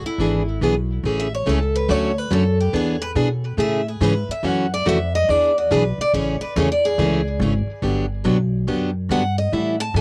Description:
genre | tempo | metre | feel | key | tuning
acoustic string swing (jazz manouche) | 142 BPM | 4/4 | swing 64% on 8ths | A major | A4 = 440 Hz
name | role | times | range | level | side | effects
picked steel-string acoustic guitar | melody | 0.0-10.0 s | E4 to A5 | -25 LUFS | equal | cassette tape, tape echo
upright bass | bass | 0.0-10.0 s | G1 to B2 | -25 LUFS | equal | none
picked plugged-in steel-string acoustic guitar | accompaniment | 0.2-10.0 s | C#3 to A4 | -22 LUFS | equal | cassette tape
room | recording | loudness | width
moderate booth ambience, RT60 0.2 s | home recording on cassette | -20 LUFS | mono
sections
0.0-7.8 A section; 7.8-10.0 A section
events
steel-string acoustic guitar solo 0.0-10.0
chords
0.0 E7; 1.0 Amaj7; 1.9 Dmaj7; 2.7 E7; 3.6 Amaj7; 4.4 F#m7; 5.3 E7; 6.1 Amaj7; 7.8 Gmaj7

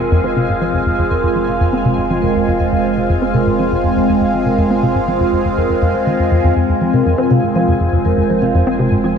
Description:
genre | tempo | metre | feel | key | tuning
ambient, sequencer-driven space music | 121 BPM | 4/4 | straight | F minor | A4 = 440 Hz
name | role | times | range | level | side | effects
phased analog pad | sustained chords | 0.0-9.2 s | Ab3 to F5 | -16 LUFS | right 1 dB | phaser, chorus
vibraphone with soft mallets | arpeggios | 0.0-9.1 s | F4 to F5 | -21 LUFS | moving between left 2 dB and right 4 dB | auto-pan, tape echo
plucky analog bass | riff | 0.0-9.2 s | F2 to C4 | -17 LUFS | equal | ensemble chorus, tape echo
round analog bass | bass | 0.0-9.2 s | F1 | -31 LUFS | left 1 dB | tube saturation
pulsing gated texture | texture | 0.0-9.2 s | Ab5 | -31 LUFS | equal | chorus, built-in reverb
room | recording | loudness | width
wet cathedral reverb, RT60 6.9 s | dreamy mix soaked in reverb | -13 LUFS | side -7 dB against mid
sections
0.0-9.2 A section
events
fade-in on analog synth bass 0.0-9.2; filter sweep on analog synth bass 0.0-9.2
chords
0.0 Fm

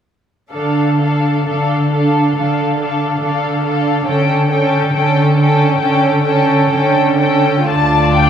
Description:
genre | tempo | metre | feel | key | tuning
classical, slow romantic movement for string orchestra | 58-72 BPM | 4/4 | rubato | D minor | A4 = 440 Hz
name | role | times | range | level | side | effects
muted studio violin section | melody | 0.5-8.3 s | F5 to A5 | -19 LUFS | left 6 dB | none
muted studio violin section | second line | 0.5-8.3 s | F4 to D5 | -19 LUFS | equal | none
muted studio viola section | accompaniment | 0.5-8.3 s | A3 to D4 | -18 LUFS | right 2 dB | none
muted studio cello section | bass | 0.5-7.6 s | D3 | -16 LUFS | right 1 dB | none
muted studio double bass section | bass | 7.7-8.3 s | D2 | -15 LUFS | right 2 dB | none
room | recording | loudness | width
wet recital hall reverb, RT60 1.4 s | heard from further back in the room | -12 LUFS | side -8 dB against mid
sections
0.5-7.7 A section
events
none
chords
0.5 Dm; 4.1 A7/D; 7.7 Dm

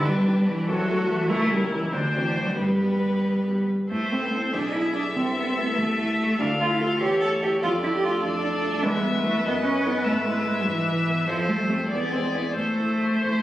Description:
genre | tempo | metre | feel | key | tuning
quick classical-period movement for piano quartet | 87-100 BPM (dotted quarters) | 6/8 | rubato | G major, A minor from 3.9 s | A4 = 441 Hz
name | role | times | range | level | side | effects
rich violin | melody | 0.0-13.4 s | A4 to F5 | -29 LUFS | left 3 dB | none
rich cello | second line | 0.0-13.4 s | D3 to A4 | -24 LUFS | right 1 dB | none
rich viola | accompaniment | 0.0-13.4 s | B3 to C5 | -31 LUFS | equal | none
warm concert grand piano | accompaniment | 0.0-13.4 s | B1 to D5 | -30 LUFS | left 1 dB | none
room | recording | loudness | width
wet recital hall reverb, RT60 1.6 s | recorded on a phone in the room, studio reverb | -21 LUFS | side -14 dB against mid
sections
0.0-3.9 A section; 3.9-13.4 B section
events
none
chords
0.1 G/B; 0.7 Am/C; 1.3 C#dim7; 1.9 D7; 2.6 G; 3.9 Am; 4.5 E/B; 5.2 Am/C; 6.4 Dm; 7.0 A/E; 7.6 Dm/F; 8.8 E5; 9.4 B7/F#; 10.1 E/G#; 11.3 F; 11.9 E7; 12.6 Am

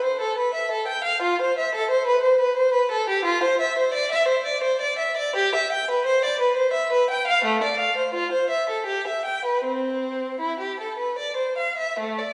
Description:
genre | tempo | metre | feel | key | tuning
classical, baroque-style suite movement for unaccompanied violin | 72-92 BPM | 3/4 | rubato | C major from 3.3 s | A4 = 438 Hz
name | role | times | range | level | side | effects
warm violin | solo | 0.0-12.3 s | A3 to G5 | -23 LUFS | equal | none
room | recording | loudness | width
wet recital hall reverb, RT60 1.8 s | heard from further back in the room, nothing above 10.6 kHz | -23 LUFS | mono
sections
0.0-12.0 A section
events
none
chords
none

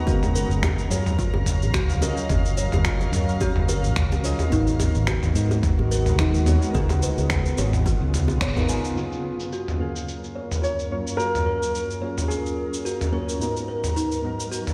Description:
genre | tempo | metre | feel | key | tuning
sunset chillout | 108 BPM | 4/4 | swing 55% on 16ths | F# major | A4 = 445 Hz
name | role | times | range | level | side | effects
soft electric-piano-like synth keys | accompaniment | 0.0-14.7 s | F#2 to E#5 | -33 LUFS | equal | chorus, tape echo
shimmering ambient pad | sustained chords | 0.0-14.7 s | F#2 to A#5 | -33 LUFS | equal | chorus, built-in reverb
kalimba | arpeggios | 0.1-14.7 s | D#4 to G#5 | -34 LUFS | equal | low-pass filter, tape echo
fretless electric bass | bass | 0.1-8.8 s | F#1 to G#2 | -25 LUFS | equal | none
dusty soul sampler-style drum kit | drums | 0.1-14.7 s | finger snaps, shaker, toms | -29 LUFS | equal | low-pass filter on perc, low-pass filter on toms, low-pass filter on snare, low-pass filter on room
electronic kick drum | drums | 0.1-8.5 s | none | -28 LUFS | equal | overdrive
bongos | percussion | 0.2-8.7 s | none | -37 LUFS | equal | none
warm baby grand piano | melody | 10.6-13.1 s | G#4 to C#5 | -31 LUFS | equal | tape echo
room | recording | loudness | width
moderate lush hall reverb, RT60 2.2 s | played on a big sound system in a bare room, large studio reverb | -23 LUFS | mono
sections
0.0-9.0 A section; 9.0-14.7 B section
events
band accent 8.4; filter sweep on kalimba 9.0-14.7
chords
0.1 F#maj7; 4.5 G#m9; 6.7 C#7; 9.0 F#maj7; 13.4 G#m9

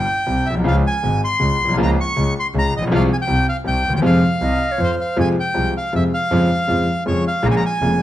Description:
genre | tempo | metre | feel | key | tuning
tango | 159 BPM | 3/4 | rubato | F minor | A4 = 437 Hz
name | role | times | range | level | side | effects
bandoneon | melody | 0.0-8.0 s | C5 to Db6 | -21 LUFS | equal | none
clear concert grand piano | accompaniment | 0.0-8.0 s | F1 to F4 | -19 LUFS | left 1 dB | none
bright double bass | bass | 0.0-8.0 s | F1 to F2 | -22 LUFS | right 1 dB | none
breathy bright concert flute | second line | 4.4-5.2 s | C5 to Eb5 | -25 LUFS | right 3 dB | none
room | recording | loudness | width
moderate large studio reverb, RT60 1.2 s | vinyl crackle | -16 LUFS | side -13 dB against mid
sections
0.0-5.2 A section; 5.2-8.0 B section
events
none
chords
0.0 C; 0.7 Db; 1.8 Bbm/Db; 2.9 Fm/C; 3.7 C; 4.0 Fm; 6.3 Dbmaj7/F; 7.4 Bbm7

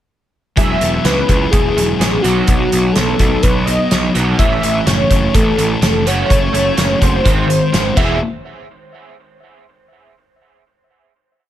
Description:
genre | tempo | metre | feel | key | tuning
indie rock | 126 BPM | 4/4 | straight | E major | A4 = 440 Hz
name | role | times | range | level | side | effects
wide unison lead | melody | 0.6-8.2 s | F#4 to E5 | -18 LUFS | equal | plate reverb
overdriven electric guitar | riff | 0.6-8.2 s | D#3 to G#4 | -22 LUFS | right 7 dB | ensemble chorus
thick fuzz guitar | riff | 0.6-8.2 s | D#3 to G#4 | -20 LUFS | left 6 dB | distortion
fuzz picked electric bass | bass | 0.6-8.2 s | E1 to C#2 | -19 LUFS | equal | overdrive
loose indie drum kit | drums | 0.6-8.1 s | crash cymbal, hi-hat, kick drum, snare drum | -17 LUFS | equal | none
room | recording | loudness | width
light reverb | none | -12 LUFS | side -12 dB against mid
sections
0.6-8.2 verse; 8.2-10.1 final hit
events
drum fill 8.0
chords
0.6 Eadd9; 2.2 B; 4.4 A; 6.1 F#m; 7.3 G#; 8.0 E; 8.2 N.C.

